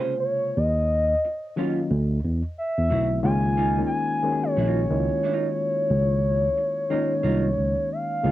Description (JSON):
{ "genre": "R&B", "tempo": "90 BPM", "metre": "4/4", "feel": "swing 62% on 16ths", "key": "Db major", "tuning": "A4 = 440 Hz", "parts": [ { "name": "gliding portamento lead", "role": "melody", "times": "0.0-8.3 s", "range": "C5 to Ab5", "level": "-25 LUFS", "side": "equal", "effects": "chorus, phaser" }, { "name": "vintage hollow-body jazz guitar", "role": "second line", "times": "0.0-8.3 s", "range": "Gb3 to C5", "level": "-30 LUFS", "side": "right 8 dB", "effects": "cassette tape" }, { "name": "barky reed electric piano", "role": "accompaniment", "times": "0.0-8.3 s", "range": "C3 to Ab4", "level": "-28 LUFS", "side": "left 4 dB", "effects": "overdrive, cassette tape" }, { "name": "overdriven tine electric piano", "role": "bass", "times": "0.6-8.3 s", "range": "Bb1 to E2", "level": "-23 LUFS", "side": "right 1 dB", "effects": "none" } ], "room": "moderate booth ambience, RT60 0.3 s", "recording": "home recording on cassette", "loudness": "-21 LUFS", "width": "side -14 dB against mid", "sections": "0.0-8.3 A section", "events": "none", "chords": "0.0 Bbm9; 0.6 Ebm9; 1.9 D9; 3.2 Db69" }